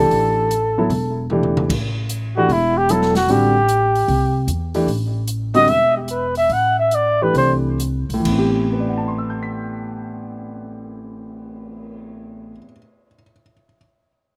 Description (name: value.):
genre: modal jazz.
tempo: 128-151 BPM.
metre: 4/4.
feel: swing 67% on 8ths.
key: A dorian.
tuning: A4 = 442 Hz.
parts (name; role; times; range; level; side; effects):
dark trumpet; melody; 0.0-7.5 s; E4 to F#5; -19 LUFS; equal; slapback echo.
warm concert grand piano; accompaniment; 0.0-13.8 s; A2 to B6; -24 LUFS; equal; slapback echo.
upright bass; bass; 0.0-12.6 s; E1 to E2; -26 LUFS; equal; none.
swinging big-band drum kit; drums; 0.1-11.9 s; crash cymbal, cymbal swell, hi-hat, kick drum, snare drum, toms; -32 LUFS; equal; none.
room: little or no reverb.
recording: recorded outdoors, with no room sound.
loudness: -18 LUFS.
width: mono.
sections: 0.0-1.7 A section; 1.7-8.3 B section; 8.3-12.0 C section.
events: drum fill 1.3-1.7; trumpet solo 1.7-8.3; slowing down 4.9-8.3.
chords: 0.0 A7(no3); 1.7 Am7; 8.3 Am9.